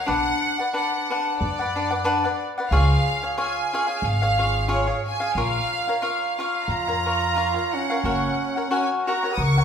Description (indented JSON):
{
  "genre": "mexican folk, mariachi",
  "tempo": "91 BPM",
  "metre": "4/4",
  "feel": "swing 55% on 8ths, rubato",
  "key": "unclear",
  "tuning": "A4 = 440 Hz",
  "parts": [
    { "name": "clear studio violin section", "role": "melody", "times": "0.0-9.6 s", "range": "C#5 to D#6", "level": "-26 LUFS", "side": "right 1 dB", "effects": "none" },
    { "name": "cavaquinho", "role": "accompaniment", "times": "0.0-9.6 s", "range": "D4 to F#5", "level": "-24 LUFS", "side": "left 2 dB", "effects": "none" },
    { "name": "upright bass", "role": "bass", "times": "0.1-9.6 s", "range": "F#1 to F#2", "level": "-24 LUFS", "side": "equal", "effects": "none" },
    { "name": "dark trumpet", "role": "second line", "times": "6.7-9.6 s", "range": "C#4 to B4", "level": "-27 LUFS", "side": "right 4 dB", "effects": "none" }
  ],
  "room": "wet large studio reverb, RT60 1.3 s",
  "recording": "band playing live in one room",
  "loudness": "-21 LUFS",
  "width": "side -8 dB against mid",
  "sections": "0.0-9.6 A section",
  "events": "none",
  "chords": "0.1 Bm; 2.7 C#; 5.3 A#m; 8.0 F#"
}